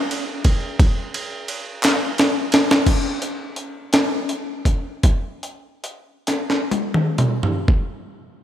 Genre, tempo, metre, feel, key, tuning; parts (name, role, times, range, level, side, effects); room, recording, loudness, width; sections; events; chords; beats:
gospel; 39-58 BPM (dotted quarters); 6/8; straight
jungle sampler-style drum kit; drums; 0.1-7.9 s; crash cymbal, hi-hat, kick drum, ride cymbal, snare drum, toms; -18 LUFS; equal; overdrive
group handclap; percussion; 1.8-2.2 s; -28 LUFS; left 1 dB
moderate lush hall reverb, RT60 2.9 s; bright 1980s-style digital production; -18 LUFS; side -11 dB against mid
0.0-2.9 A section; 2.9-7.7 B section
drum fill 1.8-2.9, 6.3-7.7; slowing down 2.9-7.7
| 0.80 1.83 | 2.87 3.93 | 5.04 6.27 | 7.68